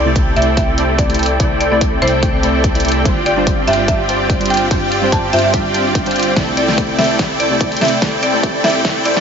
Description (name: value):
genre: future bass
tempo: 145 BPM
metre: 4/4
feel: swing 54% on 16ths, half-time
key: C major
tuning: A4 = 440 Hz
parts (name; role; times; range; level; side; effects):
- buzzing marimba with hard mallets; melody; 0.0-9.2 s; C5 to A5; -20 LUFS; equal; sidechain pumping, dub echo
- supersaw chords; riff; 0.0-9.2 s; C4 to G5; -16 LUFS; equal; lush chorus, sidechain pumping, low-pass filter
- fat analog bass; bass; 0.0-9.2 s; G1 to C2; -23 LUFS; equal; sidechain pumping
- glassy digital keys; accompaniment; 0.1-9.2 s; C3 to G5; -20 LUFS; right 1 dB; chorus, sidechain pumping, tape echo
- big-room dance drum kit; drums; 0.2-9.2 s; hi-hat, snare drum; -22 LUFS; equal; none
- electronic kick drum; drums; 0.2-8.9 s; none; -18 LUFS; equal; none
- riser; sound effects; 8.5-9.2 s; none; -36 LUFS; equal; none
room: light reverb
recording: high-pass filter, nothing above 7.6 kHz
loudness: -12 LUFS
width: side -7 dB against mid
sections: 0.0-9.2 A section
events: build-up 0.0-9.2; filter sweep 0.0-9.2; drum fill 6.4-9.2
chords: 0.0 C69; 3.1 G7sus4; 6.4 C69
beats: 0.16 0.57 0.99 | 1.40 1.81 2.23 2.64 | 3.06 3.47 3.88 4.30 | 4.71 5.12 5.54 5.95 | 6.37 6.78 7.19 7.61 | 8.02 8.43 8.85